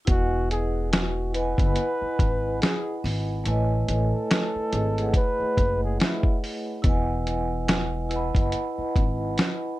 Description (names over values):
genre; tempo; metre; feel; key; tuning
lo-fi hip hop; 71 BPM; 4/4; swing 58% on 16ths; E major; A4 = 440 Hz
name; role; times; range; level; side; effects
breathy flugelhorn; melody; 0.1-6.4 s; E4 to B4; -29 LUFS; equal; none
vibraphone with soft mallets; accompaniment; 0.1-9.8 s; A3 to B5; -29 LUFS; right 1 dB; cassette tape
upright bass; bass; 0.1-9.4 s; E1 to A1; -27 LUFS; equal; none
lo-fi sampler-style drum kit; drums; 0.1-9.6 s; hi-hat, kick drum, snare drum; -23 LUFS; equal; vintage 12-bit sampler grit
room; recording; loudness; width
little or no reverb; none; -22 LUFS; side -17 dB against mid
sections
0.1-9.8 A section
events
none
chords
0.1 Emaj9; 3.5 Amaj9#11; 6.8 Emaj9